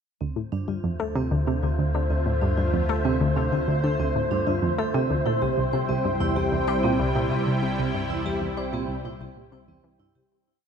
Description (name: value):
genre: ambient, sequencer-driven space music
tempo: 95 BPM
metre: 4/4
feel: straight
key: D minor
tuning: A4 = 441 Hz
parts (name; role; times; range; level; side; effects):
- sweeping resonant pad; sustained chords; 0.2-10.3 s; C3 to G5; -30 LUFS; equal; chorus
- vibraphone with medium mallets; arpeggios; 0.2-10.3 s; C4 to C5; -33 LUFS; right 3 dB; auto-pan, ping-pong delay
- analog pluck; riff; 0.2-10.2 s; C2 to A3; -26 LUFS; equal; chorus, ping-pong delay
- analog drone; bass; 1.0-10.3 s; C2 to D2; -30 LUFS; equal; chorus
- wind-like tuned noise texture; texture; 1.1-10.3 s; C5; -30 LUFS; equal; built-in reverb
room: moderate huge ambient reverb, RT60 8.5 s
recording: none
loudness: -22 LUFS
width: side -7 dB against mid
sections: 0.2-10.3 A section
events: fade-in on vibraphone 0.2-10.3; fade-in on analog synth pad 0.2-10.3; fade-out 6.9-10.3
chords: 0.2 Dm7; 5.3 C